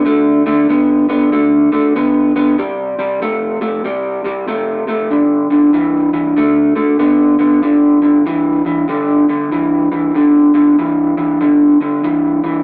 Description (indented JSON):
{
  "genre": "blues",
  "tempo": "95 BPM",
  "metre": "4/4",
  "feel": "swing 63% on 8ths",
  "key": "G major",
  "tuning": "A4 = 440 Hz",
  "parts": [
    { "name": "electric guitar through a small old amp", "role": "solo", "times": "0.0-12.6 s", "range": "G2 to B3", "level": "-13 LUFS", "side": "equal", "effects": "none" }
  ],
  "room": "wet studio reverb, RT60 0.6 s",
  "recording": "none",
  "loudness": "-13 LUFS",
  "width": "mono",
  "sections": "0.0-7.6 A section; 7.6-12.6 B section",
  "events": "none",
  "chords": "0.0 D5; 2.6 C5; 5.1 G5; 6.4 D5; 7.6 G5"
}